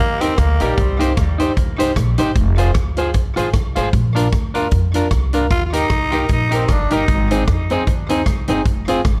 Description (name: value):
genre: ska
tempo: 152 BPM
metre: 4/4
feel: swing 57% on 8ths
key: Eb major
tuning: A4 = 440 Hz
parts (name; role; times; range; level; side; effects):
- growling tenor saxophone; melody; 0.0-1.0, 5.5-7.3 s; G3 to F4; -26 LUFS; equal; tape echo
- dark upright piano; stabs; 0.0-9.0 s; D4 to C5; -26 LUFS; equal; none
- upright bass; bass; 0.0-9.2 s; F1 to F2; -22 LUFS; equal; none
- semi-hollow electric guitar; accompaniment; 0.2-9.0 s; C4 to C5; -24 LUFS; equal; none
- swinging big-band drum kit; drums; 0.2-9.2 s; hi-hat, kick drum, rim click; -22 LUFS; equal; none
room: little or no reverb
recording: none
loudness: -17 LUFS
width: mono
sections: 0.0-9.2 A section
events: none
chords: 0.0 Eb; 0.8 Cm; 2.4 Fm; 3.9 Bb; 5.5 Eb; 7.1 Ab; 8.7 Fm